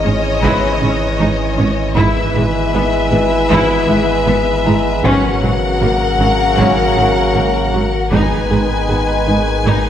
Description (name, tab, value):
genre	cinematic, hybrid orchestral and electronic film score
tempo	78 BPM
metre	4/4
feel	straight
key	unclear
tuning	A4 = 439 Hz
part	warm symphonic violin section	melody	0.0-9.9 s	D#5 to G#5	-21 LUFS	left 5 dB	none
part	dark symphonic violin section	second line	0.0-9.9 s	A#4 to C#5	-23 LUFS	left 2 dB	none
part	mellow trombone section	sustained chords	0.0-9.9 s	C#3 to G#3	-20 LUFS	right 4 dB	none
part	warm French horn section	sustained chords	0.0-9.9 s	A#3 to D#5	-20 LUFS	left 5 dB	none
part	soft round pluck	arpeggios	0.0-9.9 s	C#3 to G#4	-26 LUFS	right 2 dB	none
part	saturated sub bass	bass	0.0-9.9 s	G#1	-22 LUFS	equal	none
part	bright baby grand piano	texture	0.0-9.9 s	B3 to A#5	-30 LUFS	left 1 dB	none
part	warm symphonic viola section	accompaniment	0.1-9.9 s	F#3 to E4	-22 LUFS	equal	none
part	rich symphonic cello section	bass	0.1-9.7 s	G#2	-23 LUFS	right 2 dB	none
part	warm symphonic double bass section	bass	0.1-9.7 s	G#1	-21 LUFS	right 3 dB	none
part	taiko ensemble	drums	0.4-9.9 s	none	-25 LUFS	equal	none
part	reverse cymbal	sound effects	8.1-9.9 s	none	barely audible	none	none
room	wet concert hall reverb, RT60 2.3 s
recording	none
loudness	-12 LUFS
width	side -10 dB against mid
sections	0.0-9.9 A section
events	none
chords	0.0 C#madd9/G#; 2.0 E/G#; 5.1 F#/G#; 8.1 G#m